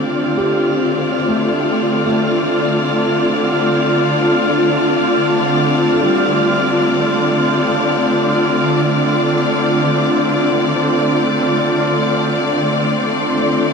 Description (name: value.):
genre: ambient.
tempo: free time.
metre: none.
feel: none.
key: D minor.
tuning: A4 = 440 Hz.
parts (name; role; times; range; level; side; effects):
warm studio string section; sustained chords; 0.0-13.7 s; D3 to D5; -15 LUFS; left 1 dB; none.
felt-muted upright piano; arpeggios; 0.0-13.7 s; G3 to F5; -24 LUFS; equal; ping-pong delay.
overtone-sweeping drone; drone; 0.2-13.7 s; D3; -21 LUFS; right 1 dB; chorus, built-in reverb, phaser.
wind-like tuned noise texture; texture; 0.0-13.7 s; C6 to F6; -24 LUFS; right 2 dB; built-in reverb.
room: wet shimmer reverb, RT60 7.5 s.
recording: none.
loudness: -13 LUFS.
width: side -5 dB against mid.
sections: 0.0-12.3 A section; 12.3-13.7 B section.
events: fade-in on synth drone 0.0-12.3; fade-in on synth texture 0.0-12.3; fade-out on felt piano 0.0-12.3.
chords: 0.0 Dm7.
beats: free time.